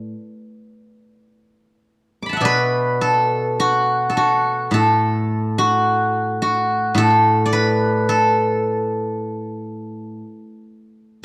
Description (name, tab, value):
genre	chinese traditional, Chinese solo plucked strings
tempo	51-58 BPM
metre	4/4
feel	rubato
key	unclear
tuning	A4 = 438 Hz
part	steel-string zither	solo	0.0-10.7 s	A2 to D6	-19 LUFS	equal	slapback echo
room	light reverb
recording	dry, close 1970s-style studio recording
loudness	-18 LUFS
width	mono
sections	0.0-2.4 A section; 2.4-11.2 B section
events	none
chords	none